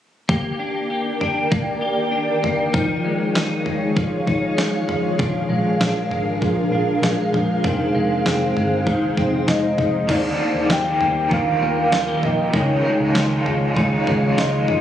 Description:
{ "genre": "dream pop", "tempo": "98 BPM", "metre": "4/4", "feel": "straight", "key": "Eb major", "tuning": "A4 = 442 Hz", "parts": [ { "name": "ethereal airy pad", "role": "sustained chords", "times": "0.8-14.8 s", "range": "Eb3 to G5", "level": "-23 LUFS", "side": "equal", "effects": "ensemble chorus, built-in reverb, tremolo" }, { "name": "clean electric guitar", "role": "arpeggios", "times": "0.3-14.8 s", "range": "Eb3 to G4", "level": "-22 LUFS", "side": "left 2 dB", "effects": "ensemble chorus, digital delay" }, { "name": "crisp 8-bit digital drum machine", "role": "drums", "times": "0.3-14.8 s", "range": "crash cymbal, kick drum, snare drum, toms", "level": "-23 LUFS", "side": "equal", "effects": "overdrive" }, { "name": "vintage muted picked electric bass", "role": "bass", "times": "5.2-14.8 s", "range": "F1 to Eb2", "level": "-24 LUFS", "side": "equal", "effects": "none" }, { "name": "warbly nostalgic lead", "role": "melody", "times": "9.5-14.8 s", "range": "Db5 to G5", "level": "-22 LUFS", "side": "equal", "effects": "chorus, digital delay" }, { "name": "cranked stack guitar", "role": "accompaniment", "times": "10.1-14.8 s", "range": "Db3 to Eb4", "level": "-25 LUFS", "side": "right 1 dB", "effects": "overdrive, tremolo, ensemble chorus" } ], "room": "moderate huge ambient reverb, RT60 4.6 s", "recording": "recorded on a phone in the room, studio reverb, compression", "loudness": "-17 LUFS", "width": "side -10 dB against mid", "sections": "0.3-10.1 A section; 10.1-14.8 B section", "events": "none", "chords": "0.3 Ebmaj7; 2.7 Dbadd9; 5.2 Bb7; 7.6 Fm7; 10.1 Ebmaj7; 12.5 Dbadd9", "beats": "| 0.29 0.90 1.52 2.13 | 2.74 3.35 3.96 4.58 | 5.19 5.80 6.41 7.03 | 7.64 8.25 8.86 9.48 | 10.09 10.70 11.31 11.93 | 12.54 13.15 13.76 14.37" }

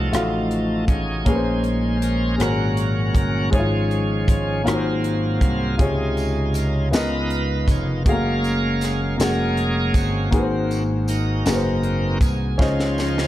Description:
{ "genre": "slow gospel", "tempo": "53 BPM (dotted quarters)", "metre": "6/8", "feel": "straight", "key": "Db major", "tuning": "A4 = 440 Hz", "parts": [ { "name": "warm grand piano", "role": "accompaniment", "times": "0.0-13.3 s", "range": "Ab2 to Gb5", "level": "-23 LUFS", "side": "left 2 dB", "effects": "none" }, { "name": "bright tonewheel organ", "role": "sustained chords", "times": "0.0-13.3 s", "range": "F3 to F5", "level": "-26 LUFS", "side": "right 2 dB", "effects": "slow rotary speaker, overdrive" }, { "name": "vintage slap bass", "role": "bass", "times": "0.0-13.3 s", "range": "F1 to Db2", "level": "-24 LUFS", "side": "equal", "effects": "none" }, { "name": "crisp fusion drum kit", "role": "drums", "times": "0.1-13.3 s", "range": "hi-hat, kick drum, rim click, snare drum", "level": "-22 LUFS", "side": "equal", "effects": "none" }, { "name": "tambourine", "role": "percussion", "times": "6.2-13.3 s", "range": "none", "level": "-39 LUFS", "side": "right 3 dB", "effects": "none" } ], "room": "light reverb, small room ambience", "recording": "dark, warm production", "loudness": "-18 LUFS", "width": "side -14 dB against mid", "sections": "0.0-13.3 A section", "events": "tonewheel organ solo 0.0-13.3; drum fill 12.6-13.3", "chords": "0.0 F7b9; 1.3 Bbm9; 2.4 Ab9sus4; 3.5 Db/Ab; 4.7 Ab13; 5.8 Dbmaj7; 6.9 Db13; 8.1 Gbmaj9; 10.3 Ab9; 12.6 Dbmaj9", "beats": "0.13 | 1.26 2.40 | 3.53 4.66 | 5.79 6.93 | 8.06 9.19 | 10.33 11.46 | 12.59" }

